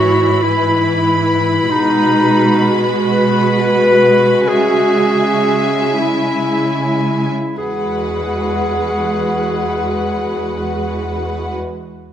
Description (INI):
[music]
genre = cinematic, emotional film score for orchestra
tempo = 36-48 BPM (dotted quarters)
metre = 6/8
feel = rubato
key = E major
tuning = A4 = 440 Hz
[part]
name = clear clarinet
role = second line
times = 0.0-11.5 s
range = D#4 to B4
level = -16 LUFS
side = left 1 dB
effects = none
[part]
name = warm symphonic violin section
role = second line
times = 0.0-11.5 s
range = B4 to B5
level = -20 LUFS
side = left 2 dB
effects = none
[part]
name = rich symphonic viola section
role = accompaniment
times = 0.0-11.6 s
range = E3 to F#4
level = -18 LUFS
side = right 2 dB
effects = none
[part]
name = warm symphonic cello section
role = bass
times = 0.0-11.5 s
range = E2 to C#3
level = -22 LUFS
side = right 2 dB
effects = none
[sound]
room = moderate scoring stage reverb, RT60 1.8 s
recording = none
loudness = -13 LUFS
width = side -10 dB against mid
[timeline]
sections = 0.0-7.6 A section; 7.6-10.8 B section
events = slowing down 0.4-7.6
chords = 0.0 E/G#; 1.7 B6; 4.5 C#m; 7.6 Eadd9